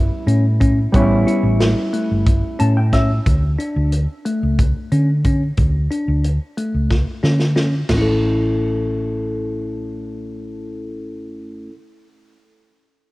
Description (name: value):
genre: progressive instrumental, band music in an uneven meter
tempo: 181 BPM (eighths)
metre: 7/8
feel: straight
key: A mixolydian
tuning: A4 = 440 Hz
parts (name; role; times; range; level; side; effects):
- hollow-body jazz guitar; accompaniment; 0.0-3.2 s; G3 to A5; -20 LUFS; right 1 dB; none
- hollow-body short-scale fingered electric bass; bass; 0.0-11.7 s; G1 to D3; -18 LUFS; equal; none
- bell-like tine electric piano; arpeggios; 0.3-11.7 s; A3 to A4; -23 LUFS; left 2 dB; wide subtle chorus, tape echo
- natural country drum kit; drums; 0.3-8.0 s; china cymbal, hi-hat, kick drum, snare drum, toms; -19 LUFS; equal; cassette tape
room: light reverb, small room ambience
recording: home recording on cassette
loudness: -15 LUFS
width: side -20 dB against mid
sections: 0.0-7.9 A section; 7.9-10.2 B section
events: hollow-body jazz guitar fill 2.3-3.3; drum fill 6.9-7.9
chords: 0.0 A7; 3.3 D5; 7.9 A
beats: 0.28 0.61 | 0.94 1.27 1.60 1.93 2.26 2.59 2.92 | 3.26 3.59 3.92 4.25 4.58 4.91 5.25 | 5.58 5.91 6.24 6.57 6.90 7.23 7.57 | 7.90 8.23 8.56 8.89 9.22 9.56 9.89